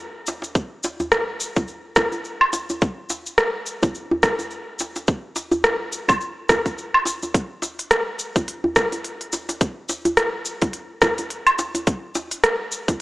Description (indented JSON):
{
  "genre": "downtempo",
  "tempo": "106 BPM",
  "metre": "4/4",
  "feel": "swing 58% on 16ths",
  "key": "none",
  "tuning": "none",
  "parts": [
    { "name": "organic electronic drum kit", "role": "drums", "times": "0.3-13.0 s", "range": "cabasa, hi-hat, rim click, woodblock", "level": "-20 LUFS", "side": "equal", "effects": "none" },
    { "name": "djembe", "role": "percussion", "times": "0.3-13.0 s", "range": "none", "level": "-27 LUFS", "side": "equal", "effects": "none" },
    { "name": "electronic kick drum", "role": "drums", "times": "0.6-13.0 s", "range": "none", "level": "-21 LUFS", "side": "equal", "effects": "none" }
  ],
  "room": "moderate concert hall reverb, RT60 2.3 s",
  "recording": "small speaker sound",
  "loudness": "-20 LUFS",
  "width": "side -20 dB against mid",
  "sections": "0.0-13.0 A section",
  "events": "none",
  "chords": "none",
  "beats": "| 0.55 1.12 1.68 2.25 | 2.82 3.38 3.95 4.51 | 5.08 5.65 6.21 6.78 | 7.34 7.91 8.48 9.04 | 9.61 10.17 10.74 11.31 | 11.87 12.44"
}